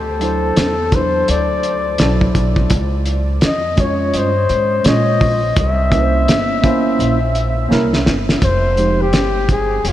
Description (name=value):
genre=hip hop, jazz-hop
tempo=84 BPM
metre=4/4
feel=swing 62% on 16ths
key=unclear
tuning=A4 = 440 Hz
part: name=breathy flugelhorn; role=melody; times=0.0-9.9 s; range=F4 to E5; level=-18 LUFS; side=left 2 dB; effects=tape echo
part: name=upright bass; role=bass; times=0.0-9.9 s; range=F1 to Bb2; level=-19 LUFS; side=equal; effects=none
part: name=mellow tine electric piano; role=accompaniment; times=0.2-9.1 s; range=F3 to Db5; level=-20 LUFS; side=right 2 dB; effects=lush chorus
part: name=cloth-damped thuddy drum kit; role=drums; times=0.2-9.9 s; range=hi-hat, kick drum, snare drum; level=-18 LUFS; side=equal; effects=none
room=moderate huge ambient reverb, RT60 8.0 s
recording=dreamy mix soaked in reverb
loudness=-13 LUFS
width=side -13 dB against mid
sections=0.0-8.4 A section; 8.4-9.9 B section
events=drum fill 7.7-8.4; flugelhorn solo 8.4-9.9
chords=0.0 D9; 2.7 Dbmaj7; 5.6 C7b9; 8.4 Fm9